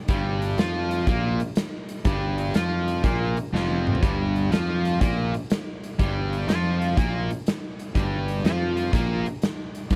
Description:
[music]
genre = blues rock power trio and southern rock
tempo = 122 BPM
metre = 4/4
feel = swing 67% on 8ths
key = G minor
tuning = A4 = 440 Hz
[part]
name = distorted electric guitar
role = riff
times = 0.1-10.0 s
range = F2 to F4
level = -29 LUFS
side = equal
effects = overdrive
[part]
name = fuzz fingered electric bass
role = bass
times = 0.1-10.0 s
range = F1 to F2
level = -29 LUFS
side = equal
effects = overdrive
[part]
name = huge arena drum kit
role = drums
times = 0.1-10.0 s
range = hi-hat, kick drum, snare drum, toms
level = -29 LUFS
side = equal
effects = none
[sound]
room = studio reverb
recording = none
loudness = -25 LUFS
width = mono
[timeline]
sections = 0.0-10.0 A section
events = drum fill 3.5-4.0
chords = 0.0 Gm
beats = | 0.09 0.58 1.08 1.57 | 2.06 2.55 3.05 3.54 | 4.03 4.52 5.01 5.50 | 5.99 6.48 6.97 7.46 | 7.95 8.44 8.93 9.42 | 9.91

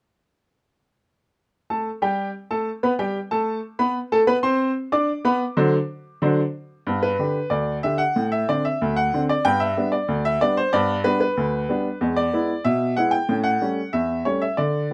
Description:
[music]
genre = ragtime piano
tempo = 93 BPM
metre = 2/4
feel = straight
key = G major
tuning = A4 = 441 Hz
[part]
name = clear upright piano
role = solo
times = 1.7-14.9 s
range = D2 to D6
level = -22 LUFS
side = equal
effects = none
[sound]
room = light reverb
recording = close, detailed microphones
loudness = -22 LUFS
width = mono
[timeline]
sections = 1.7-6.9 A section; 6.9-14.9 B section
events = none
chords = 1.7 G; 4.3 D7; 6.9 G; 8.2 D5/A; 9.4 G; 12.0 E; 13.3 A7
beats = | 1.70 2.35 | 3.00 3.64 | 4.28 4.92 | 5.56 6.21 | 6.86 7.51 | 8.15 8.79 | 9.44 10.08 | 10.72 11.37 | 12.01 12.65 | 13.29 13.94 | 14.58

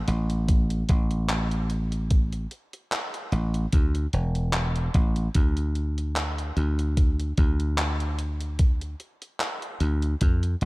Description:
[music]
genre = vaporwave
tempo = 74 BPM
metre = 4/4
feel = swing 54% on 16ths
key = unclear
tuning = A4 = 444 Hz
[part]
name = dry thumbed slap bass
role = bass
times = 0.1-10.7 s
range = E1 to F2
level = -25 LUFS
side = equal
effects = none
[part]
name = detuned 8-bit digital drum machine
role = drums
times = 0.1-10.7 s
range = handclaps, hi-hat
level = -31 LUFS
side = equal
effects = studio ambience, gated reverb
[part]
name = electronic kick drum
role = drums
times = 0.5-10.4 s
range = none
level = -21 LUFS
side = equal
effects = studio ambience
[sound]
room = digital ambience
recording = none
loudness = -23 LUFS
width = side -22 dB against mid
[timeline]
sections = 0.0-10.7 A section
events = none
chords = none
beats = 0.48 1.29 | 2.11 2.92 3.73 4.54 | 5.35 6.16 6.97 7.78 | 8.59 9.40 10.21

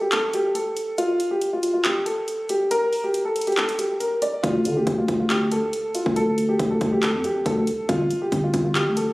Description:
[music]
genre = hip hop, trap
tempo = 139 BPM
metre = 4/4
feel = half-time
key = D minor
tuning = A4 = 442 Hz
[part]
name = dark grand piano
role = melody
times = 0.0-9.1 s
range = F4 to D5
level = -22 LUFS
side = equal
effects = digital delay
[part]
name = trap drum kit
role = drums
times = 0.1-9.1 s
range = handclaps, hi-hat, kick drum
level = -27 LUFS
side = equal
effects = overdrive
[part]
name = growling 808-style bass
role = bass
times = 4.4-9.1 s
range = G1 to D3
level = -23 LUFS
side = equal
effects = none
[sound]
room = light reverb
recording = recorded on a phone in the room, club reverb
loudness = -20 LUFS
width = side -20 dB against mid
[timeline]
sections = 0.0-9.1 A section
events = break 0.0-4.4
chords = 0.0 N.C.; 4.4 Dm; 7.9 G5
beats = 0.12 0.55 | 0.98 1.41 1.85 2.28 | 2.71 3.14 3.57 4.00 | 4.44 4.87 5.30 5.73 | 6.16 6.59 7.03 7.46 | 7.89 8.32 8.75

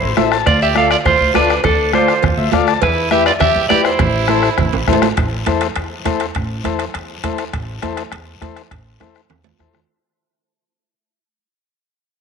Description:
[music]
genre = latin, cumbia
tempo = 204 BPM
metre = 4/4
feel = straight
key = A minor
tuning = A4 = 440 Hz
[part]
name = clean electric guitar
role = melody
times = 0.0-4.9 s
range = A4 to F5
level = -17 LUFS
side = equal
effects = spring reverb, slapback echo
[part]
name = growling trumpet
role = second line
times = 0.0-4.9 s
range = D4 to A4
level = -22 LUFS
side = right 11 dB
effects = none
[part]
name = overdriven combo organ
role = accompaniment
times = 0.0-9.8 s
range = E4 to A5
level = -20 LUFS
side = left 10 dB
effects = none
[part]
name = upright bass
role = bass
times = 0.0-9.8 s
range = A1 to E2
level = -23 LUFS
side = equal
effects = none
[part]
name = bombo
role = percussion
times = 0.2-9.9 s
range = none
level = -21 LUFS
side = left 1 dB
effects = none
[part]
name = congas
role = percussion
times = 0.2-9.8 s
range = none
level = -24 LUFS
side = right 13 dB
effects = none
[part]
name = guiro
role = percussion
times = 0.2-9.9 s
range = none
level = -32 LUFS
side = left 12 dB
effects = none
[part]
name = timbales and cowbell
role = percussion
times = 0.2-9.8 s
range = none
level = -25 LUFS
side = right 14 dB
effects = none
[sound]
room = moderate plate reverb, RT60 3.6 s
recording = 1960s-style stereo with parts hard left and right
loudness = -13 LUFS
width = side -6 dB against mid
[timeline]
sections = 0.0-5.2 A section; 5.2-9.9 B section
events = transistor combo organ fill 0.0-0.5, 2.2-2.8; drum fill 4.7-5.2, 9.0-9.9; fade-out 5.2-9.9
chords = 0.5 Dm; 2.8 Em; 4.0 Am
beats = 0.17 | 0.46 0.76 1.05 1.35 | 1.64 1.93 2.23 2.52 | 2.82 3.11 3.41 3.70 | 3.99 4.29 4.58 4.88 | 5.17 5.47 5.76 6.06 | 6.35 6.64 6.94 7.24 | 7.53 7.83 8.12 8.41 | 8.71 9.00 9.30 9.59

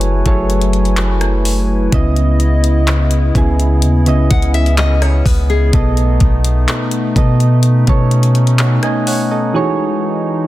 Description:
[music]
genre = contemporary R&B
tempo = 63 BPM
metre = 4/4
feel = straight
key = unclear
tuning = A4 = 439 Hz
[part]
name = soft electric-piano-like synth keys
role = accompaniment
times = 0.0-10.5 s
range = B2 to G#5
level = -17 LUFS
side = right 2 dB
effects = chorus
[part]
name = hollow soft pad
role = sustained chords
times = 0.0-10.5 s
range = C#3 to G#5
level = -21 LUFS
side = left 2 dB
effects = chorus
[part]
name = warm 808-style bass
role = bass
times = 0.0-8.8 s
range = F#1 to B2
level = -13 LUFS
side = equal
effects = none
[part]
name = smooth R&B drum kit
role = drums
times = 0.0-9.3 s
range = handclaps, hi-hat, kick drum, rim click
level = -17 LUFS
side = equal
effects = none
[part]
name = nylon-string guitar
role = arpeggios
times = 4.3-5.9 s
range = G#4 to F#5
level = -21 LUFS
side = left 6 dB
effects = digital delay
[sound]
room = little or no reverb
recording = dense, heavily limited modern master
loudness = -11 LUFS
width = side -16 dB against mid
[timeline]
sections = 0.0-10.5 A section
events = break 9.5-10.5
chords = 0.0 F#m11; 1.9 C#m9; 5.7 B7; 9.5 Emaj13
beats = 0.02 0.97 | 1.92 2.88 3.83 4.78 | 5.73 6.68 7.64 8.59 | 9.54

